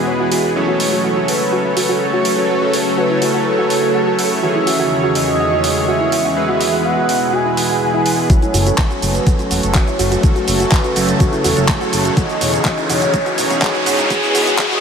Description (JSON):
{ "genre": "progressive house", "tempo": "124 BPM", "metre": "4/4", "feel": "straight", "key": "F# dorian", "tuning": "A4 = 440 Hz", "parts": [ { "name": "evolving wavetable pad", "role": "sustained chords", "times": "0.0-14.8 s", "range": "E2 to A4", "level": "-22 LUFS", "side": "equal", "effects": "phaser, built-in reverb, sidechain pumping" }, { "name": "soft supersaw", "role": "stabs", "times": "0.0-14.8 s", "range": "D#3 to C#5", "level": "-20 LUFS", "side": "right 1 dB", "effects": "sidechain pumping, low-pass filter, ping-pong delay" }, { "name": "soft round pluck", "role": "arpeggios", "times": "0.1-14.8 s", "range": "E4 to F#5", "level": "-22 LUFS", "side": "equal", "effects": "chorus, sidechain pumping, ping-pong delay" }, { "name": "pop drum kit", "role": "drums", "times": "0.3-14.8 s", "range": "handclaps, hi-hat, shaker", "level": "-21 LUFS", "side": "equal", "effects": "overdrive, sidechain pumping on hats, sidechain pumping on perc" }, { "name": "expressive synth lead", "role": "melody", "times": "0.6-14.8 s", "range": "G#4 to G#5", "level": "-20 LUFS", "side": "equal", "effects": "lush chorus, sidechain pumping, ping-pong delay" }, { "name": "electronic kick drum", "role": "drums", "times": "8.3-14.7 s", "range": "none", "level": "-15 LUFS", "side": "equal", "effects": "overdrive" }, { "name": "riser", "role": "sound effects", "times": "11.2-14.8 s", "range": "none", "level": "-23 LUFS", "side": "equal", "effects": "none" }, { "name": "fat analog bass", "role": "bass", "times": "8.5-14.5 s", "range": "E1 to F#1", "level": "-20 LUFS", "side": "equal", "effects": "sidechain pumping" } ], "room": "wet huge ambient reverb, RT60 8.0 s", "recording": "dreamy mix soaked in reverb, high-pass filter", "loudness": "-13 LUFS", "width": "side -6 dB against mid", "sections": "0.0-8.3 A section; 8.3-14.8 B section", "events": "filter sweep on synth pluck 0.0-8.3, 8.3-14.8; build-up 8.3-14.8; filter sweep on supersaw synth 8.3-14.8; filter sweep 8.3-14.8; riser 11.2-14.8", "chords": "0.0 E; 0.6 F#m; 4.4 C#madd9/E; 6.4 E; 8.3 F#m; 12.2 C#madd9/E; 14.1 E" }